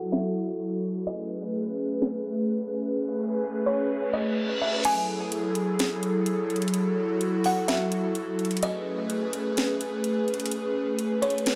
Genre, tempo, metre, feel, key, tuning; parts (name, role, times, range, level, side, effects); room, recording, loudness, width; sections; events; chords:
hip hop, atmospheric cloud-rap; 127 BPM; 4/4; half-time; F# dorian; A4 = 441 Hz
buzzing kalimba; melody; 0.0-11.6 s; C#5 to G#5; -32 LUFS; equal; low-pass filter, tape echo
airy breathy pad; sustained chords; 0.0-11.6 s; F#3 to B4; -29 LUFS; equal; chorus
trap drum kit; drums; 0.1-11.6 s; crash cymbal, hi-hat, snare drum; -32 LUFS; equal
reverse cymbal; sound effects; 4.1-4.8 s; -34 LUFS; equal
moderate scoring stage reverb, RT60 2.0 s; dry, gritty hardware recording, low-pass filter; -27 LUFS; mono
0.0-4.8 A section; 4.8-11.6 B section
filter sweep 0.0-4.8; drums muted 3.0-4.8; reverse cymbal 4.1-4.8; kick muted 4.8-11.6
0.0 F#m7; 1.1 Amaj9; 4.8 F#m9; 8.6 Amaj9